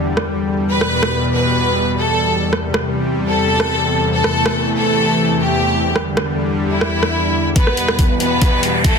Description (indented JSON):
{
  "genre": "heavy wobble dubstep",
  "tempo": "140 BPM",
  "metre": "4/4",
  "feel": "half-time",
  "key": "E minor",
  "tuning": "A4 = 440 Hz",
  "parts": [
    { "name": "supersaw pad", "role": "sustained chords", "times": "0.0-9.0 s", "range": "E2 to A3", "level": "-18 LUFS", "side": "left 1 dB", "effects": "sidechain pumping, low-pass filter" },
    { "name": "dubstep drum kit", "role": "drums", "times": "0.2-8.9 s", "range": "hi-hat, rim click", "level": "-21 LUFS", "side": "right 1 dB", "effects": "overdrive, high-pass filter on cymbals, high-pass filter on snare, high-pass filter on hats" },
    { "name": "clear studio violin section", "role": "melody", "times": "0.7-9.0 s", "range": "A3 to B4", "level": "-18 LUFS", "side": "equal", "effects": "ping-pong delay" },
    { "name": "electronic kick drum", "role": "drums", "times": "7.6-8.9 s", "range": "none", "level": "-14 LUFS", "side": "equal", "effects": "overdrive" },
    { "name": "riser", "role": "sound effects", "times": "7.9-9.0 s", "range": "none", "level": "-22 LUFS", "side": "equal", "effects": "none" }
  ],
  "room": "moderate digital room reverb, RT60 1.0 s",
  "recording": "dense, heavily limited modern master",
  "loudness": "-14 LUFS",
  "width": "side -5 dB against mid",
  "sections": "0.0-7.6 A section; 7.6-9.0 B section",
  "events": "build-up 7.6-9.0; filter sweep on supersaw synth 7.6-9.0; riser 7.9-9.0",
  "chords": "0.0 Dsus4/E; 0.7 Em; 2.4 C/E; 4.1 Am/E; 5.8 Dsus4/E; 7.6 Em"
}